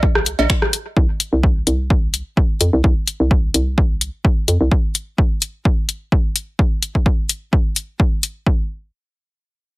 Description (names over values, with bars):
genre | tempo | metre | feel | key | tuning
minimal techno | 128 BPM | 4/4 | swing 54% on 16ths | unclear | A4 = 440 Hz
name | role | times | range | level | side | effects
hollow knocking FM bass | bass | 0.0-4.7 s | Bb1 to F2 | -18 LUFS | equal | sidechain pumping
electronic kick drum | drums | 0.0-8.6 s | none | -16 LUFS | equal | overdrive
electronic rim click and cowbell | percussion | 0.2-0.7 s | none | -20 LUFS | right 1 dB | tape echo
punchy analog drum machine | drums | 0.3-8.3 s | finger snaps, hi-hat | -18 LUFS | left 4 dB | overdrive
room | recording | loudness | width
little or no reverb | none | -16 LUFS | side -21 dB against mid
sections
0.0-8.5 A section; 8.5-9.8 B section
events
none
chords
none